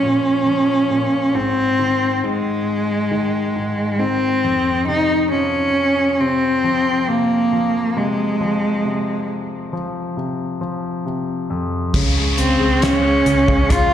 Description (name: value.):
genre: pop ballad.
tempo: 68 BPM.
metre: 4/4.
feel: straight.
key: unclear.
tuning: A4 = 440 Hz.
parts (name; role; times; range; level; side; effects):
warm cello; melody; 0.0-13.9 s; Ab3 to F4; -17 LUFS; equal; slapback echo.
warm concert grand piano; accompaniment; 0.0-13.9 s; F2 to Ab3; -24 LUFS; left 2 dB; slapback echo.
airy breathy pad; sustained chords; 11.9-13.9 s; Ab4 to Db6; -27 LUFS; left 3 dB; chorus.
vintage muted fingered electric bass; bass; 11.9-13.9 s; Db2; -20 LUFS; equal; none.
damped 70s drum kit; drums; 11.9-13.9 s; crash cymbal, hi-hat, kick drum, snare drum; -21 LUFS; equal; none.
downlifter; sound effects; 11.9-13.9 s; none; -25 LUFS; equal; slapback echo.
room: light reverb.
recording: live gig heard through the venue's PA, recital hall reverb.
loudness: -16 LUFS.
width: side -10 dB against mid.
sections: 0.0-11.9 A section; 11.9-13.9 B section.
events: none.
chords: 0.0 Bbm; 1.4 Ab; 4.4 F5; 11.9 Db.